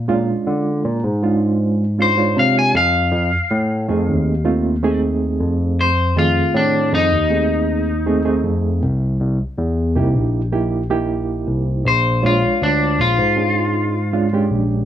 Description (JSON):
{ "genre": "straight-eighth soul blues", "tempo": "79 BPM", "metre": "4/4", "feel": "straight", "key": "unclear", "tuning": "A4 = 440 Hz", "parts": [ { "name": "barky tine electric piano", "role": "bass", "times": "0.0-14.8 s", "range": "Bb1 to D3", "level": "-19 LUFS", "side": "equal", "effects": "overdrive, phaser" }, { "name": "reed electric piano", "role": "accompaniment", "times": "0.1-14.8 s", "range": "Eb3 to C#5", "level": "-20 LUFS", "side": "right 4 dB", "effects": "fast tremolo" }, { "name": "electric guitar at the edge of break-up", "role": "melody", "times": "2.0-14.5 s", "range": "D4 to Ab5", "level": "-18 LUFS", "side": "left 2 dB", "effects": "none" } ], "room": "light reverb", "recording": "band playing live in one room", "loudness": "-15 LUFS", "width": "side -10 dB against mid", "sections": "0.0-14.8 A section", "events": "none", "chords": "0.0 Bb7#9; 2.7 F7#9; 8.8 C7#9; 11.9 Bb7#9" }